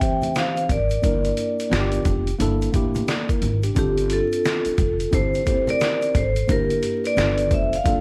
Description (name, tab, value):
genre	hip hop, jazz-hop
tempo	88 BPM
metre	4/4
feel	swing 63% on 16ths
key	G dorian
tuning	A4 = 440 Hz
part	vibraphone with medium hard mallets	melody	0.0-8.0 s	G4 to G5	-26 LUFS	equal	none
part	vibraphone with soft mallets	second line	0.0-8.0 s	D4 to E5	-33 LUFS	equal	none
part	mellow tine electric piano	accompaniment	0.0-8.0 s	E3 to D5	-28 LUFS	equal	none
part	trip hop sampler-style drum kit	drums	0.0-8.0 s	hi-hat, kick drum, snare drum	-27 LUFS	equal	none
part	tube shaker and congas	percussion	0.0-8.0 s	none	-37 LUFS	equal	none
part	upright bass	bass	0.7-8.0 s	F1 to A1	-28 LUFS	equal	none
room	light reverb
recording	vinyl crackle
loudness	-21 LUFS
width	mono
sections	0.0-8.0 A section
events	none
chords	0.0 Am7 (rootless); 1.0 Gm6; 1.7 G7; 2.4 Gm69; 3.8 F69; 5.1 Am7/G; 6.5 Gm6; 7.2 G7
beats	0.35 | 1.04 1.72 2.40 3.08 | 3.76 4.45 5.13 5.81 | 6.49 7.17 7.85